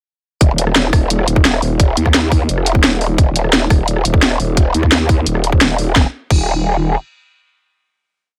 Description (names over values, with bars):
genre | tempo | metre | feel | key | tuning
dark technical drum and bass | 173 BPM | 4/4 | straight | unclear | A4 = 442 Hz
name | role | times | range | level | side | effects
growl bass | bass | 0.4-7.0 s | Eb1 to Eb2 | -18 LUFS | equal | chorus, overdrive
drum and bass drum kit | drums | 0.4-6.4 s | crash cymbal, hi-hat, rim click, snare drum | -18 LUFS | equal | none
electronic kick drum | drums | 0.4-6.4 s | none | -14 LUFS | equal | none
room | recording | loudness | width
little or no reverb | none | -14 LUFS | mono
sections
0.4-6.0 drop; 6.0-8.4 final note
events
drop 0.4-6.0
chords
none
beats
| 0.41 0.76 1.10 1.45 | 1.80 2.14 2.49 2.84 | 3.18 3.53 3.88 4.22 | 4.57 4.92 5.26 5.61 | 5.96 6.30 6.65